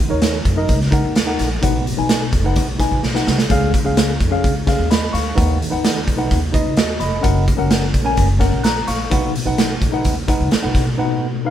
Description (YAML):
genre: uptempo 1960s-style soul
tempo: 128 BPM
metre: 4/4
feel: straight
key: unclear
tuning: A4 = 442 Hz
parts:
  - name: tine electric piano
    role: accompaniment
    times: 0.0-11.5 s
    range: Cb3 to Gb6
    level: -20 LUFS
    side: left 2 dB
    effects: medium stereo tremolo
  - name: upright bass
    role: bass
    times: 0.1-11.0 s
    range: F1 to Cb3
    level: -21 LUFS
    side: equal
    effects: none
  - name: raw garage drum kit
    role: drums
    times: 0.2-10.9 s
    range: hi-hat, kick drum, snare drum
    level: -18 LUFS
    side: right 1 dB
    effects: none
room: moderate studio reverb, RT60 0.8 s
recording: band playing live in one room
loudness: -15 LUFS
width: side -11 dB against mid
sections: 0.0-11.0 A section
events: drum fill 3.0-3.5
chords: 0.0 Ebm; 1.6 Cb; 3.5 Db; 5.4 Cb; 7.2 Gb; 9.1 Cb